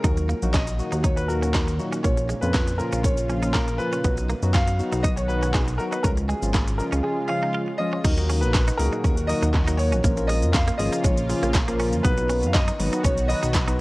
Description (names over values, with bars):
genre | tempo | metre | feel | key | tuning
dance-pop | 120 BPM | 4/4 | straight | Eb minor | A4 = 438 Hz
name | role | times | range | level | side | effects
clear concert grand piano | melody | 0.0-13.8 s | Ab4 to F5 | -29 LUFS | equal | none
soft electric-piano-like synth keys | accompaniment | 0.0-13.8 s | F3 to B4 | -29 LUFS | left 1 dB | chorus, sidechain pumping
lush unison pad | sustained chords | 0.0-13.8 s | Bb2 to Gb4 | -32 LUFS | right 1 dB | chorus, sidechain pumping
direct-recorded clean electric guitar | riff | 0.0-13.8 s | Ab3 to F4 | -33 LUFS | right 3 dB | analog chorus
chorused synth bass | bass | 0.0-13.8 s | Ab1 to F#2 | -24 LUFS | equal | sidechain pumping
house drum kit | drums | 0.0-13.8 s | crash cymbal, handclaps, hi-hat, kick drum, shaker, snare drum | -24 LUFS | equal | none
group handclap | percussion | 8.5-13.7 s | none | -35 LUFS | right 3 dB | none
room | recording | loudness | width
light reverb | worn, warbling old tape, cassette tape, warbly pitch drift | -20 LUFS | side -21 dB against mid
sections
0.0-8.0 A section; 8.0-13.8 B section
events
none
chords
0.0 Ebm; 2.0 Bbm; 4.0 B; 6.0 Db; 8.0 Ebm; 10.0 Bbm; 12.0 B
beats
| 0.04 0.54 1.04 1.54 | 2.04 2.54 3.04 3.54 | 4.04 4.54 5.04 5.54 | 6.04 6.54 7.04 7.54 | 8.04 8.54 9.04 9.54 | 10.04 10.54 11.04 11.54 | 12.04 12.54 13.04 13.54